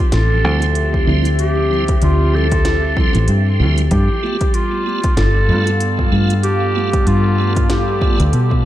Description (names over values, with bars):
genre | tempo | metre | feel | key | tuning
ambient dub | 95 BPM | 4/4 | swing 58% on 16ths | unclear | A4 = 440 Hz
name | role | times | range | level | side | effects
warm clarinet | melody | 0.0-8.6 s | F4 to A4 | -20 LUFS | equal | dub echo
warbly tape-like pad | sustained chords | 0.1-8.7 s | F3 to F5 | -24 LUFS | left 1 dB | chorus, built-in reverb, phaser
fingered electric bass | bass | 0.1-8.6 s | G1 to B2 | -16 LUFS | equal | none
organic electronic drum kit | drums | 0.1-8.5 s | hi-hat, snare drum | -28 LUFS | equal | studio ambience, dub echo
tonewheel organ | stabs | 0.4-8.2 s | F3 to F4 | -25 LUFS | right 4 dB | chorus vibrato, fast rotary speaker, dub echo
electronic kick drum | drums | 0.9-8.6 s | none | -18 LUFS | equal | overdrive, studio ambience
room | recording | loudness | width
digital ambience | none | -13 LUFS | side -13 dB against mid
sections
0.0-8.7 A section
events
none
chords
0.0 Dm11; 3.9 G9